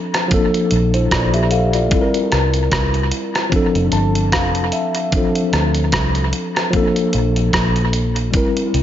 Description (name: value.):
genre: lovers rock reggae.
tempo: 75 BPM.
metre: 4/4.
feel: swing 56% on 16ths.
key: unclear.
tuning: A4 = 445 Hz.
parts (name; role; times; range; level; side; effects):
mellow tine electric piano; accompaniment; 0.0-8.8 s; E3 to A5; -18 LUFS; left 2 dB; medium stereo tremolo, dub echo.
detuned 8-bit digital drum machine; drums; 0.1-8.8 s; hi-hat, kick drum, rim click; -20 LUFS; equal; dub echo.
vintage muted fingered electric bass; bass; 0.7-8.8 s; F1 to D2; -18 LUFS; right 1 dB; none.
room: light reverb.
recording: nothing above 7.5 kHz.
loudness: -14 LUFS.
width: side -11 dB against mid.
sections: 0.0-8.8 A section.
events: tine electric piano fill 3.5-5.1.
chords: 0.3 Bbmaj7; 1.9 C7; 3.5 F6; 5.1 Dm7; 6.7 Bbmaj7.